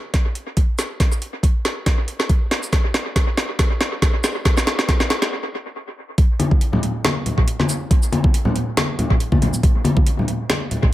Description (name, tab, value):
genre	dubstep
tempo	139 BPM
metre	4/4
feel	swing 55% on 16ths, half-time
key	none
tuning	none
part	electronic kick drum	drums	0.1-10.9 s	none	-17 LUFS	equal	overdrive
part	garage drum kit	drums	0.1-10.8 s	hi-hat, shaker, snare drum	-22 LUFS	equal	overdrive, dub echo
part	congas	percussion	6.4-10.8 s	none	-20 LUFS	left 1 dB	dub echo
room	moderate spring reverb, RT60 1.1 s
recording	echo-heavy mix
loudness	-17 LUFS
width	side -15 dB against mid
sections	0.0-6.2 A section; 6.2-10.9 B section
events	build-up 0.0-6.2; drum fill 0.0-5.3; stop 5.3-6.2; drop 6.2-10.9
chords	none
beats	0.14 0.57 | 1.00 1.43 1.86 2.30 | 2.73 3.16 3.59 4.02 | 4.45 4.89 5.32 5.75 | 6.18 6.61 7.04 7.48 | 7.91 8.34 8.77 9.20 | 9.63 10.06 10.50